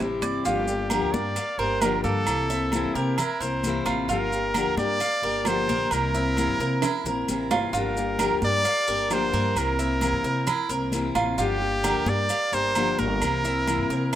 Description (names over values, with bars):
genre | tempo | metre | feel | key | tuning
latin, Cuban son and guajira | 132 BPM | 4/4 | straight | unclear | A4 = 444 Hz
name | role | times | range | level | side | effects
fingerpicked steel-string acoustic guitar | accompaniment | 0.0-14.1 s | C3 to G4 | -28 LUFS | left 5 dB | none
Cuban tres | arpeggios | 0.0-14.2 s | Bb3 to F5 | -30 LUFS | right 3 dB | none
upright bass | bass | 0.0-14.1 s | G1 to C3 | -30 LUFS | equal | none
congas | percussion | 0.0-14.1 s | none | -34 LUFS | left 1 dB | none
timbales and agogo bells | percussion | 0.0-14.2 s | none | -31 LUFS | right 8 dB | none
maracas | percussion | 0.2-14.1 s | none | -37 LUFS | left 4 dB | none
clear trumpet | melody | 0.5-14.2 s | G4 to D5 | -27 LUFS | right 1 dB | none
room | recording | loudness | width
light reverb, small room ambience | rough home demo mix | -22 LUFS | side -11 dB against mid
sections
0.5-14.2 A section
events
drum fill 6.8-7.7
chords
0.5 Gm7; 2.3 C7; 4.1 Gm7; 5.9 C7; 7.7 Gm7; 9.6 C7; 11.4 Gm7; 13.2 C7